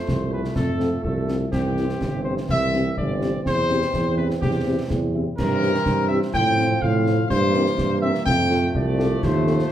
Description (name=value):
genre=military-style march for wind band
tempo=125 BPM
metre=2/4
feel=straight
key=C major, F major from 5.4 s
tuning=A4 = 441 Hz
part: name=dark trumpet section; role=melody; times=0.0-9.7 s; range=G4 to G5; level=-25 LUFS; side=left 2 dB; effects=none
part: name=warm trombone section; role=sustained chords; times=0.0-9.7 s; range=E3 to C4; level=-29 LUFS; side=right 3 dB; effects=none
part: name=mellow tuba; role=bass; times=0.1-9.6 s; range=G1 to A2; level=-23 LUFS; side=right 1 dB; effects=none
part: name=concert snare drum, concert bass drum and clash cymbals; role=drums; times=0.1-9.7 s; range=none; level=-28 LUFS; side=equal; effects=none
part: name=dark French horn section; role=accompaniment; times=0.3-9.5 s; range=C4 to Bb4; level=-29 LUFS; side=left 3 dB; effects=none
room=wet large studio reverb, RT60 0.8 s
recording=heard from further back in the room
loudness=-19 LUFS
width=side -11 dB against mid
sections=0.0-9.7 A section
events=none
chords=0.0 F; 1.5 C; 3.5 C/E; 5.4 C7/G; 6.3 F/A; 7.3 C7/G; 8.3 F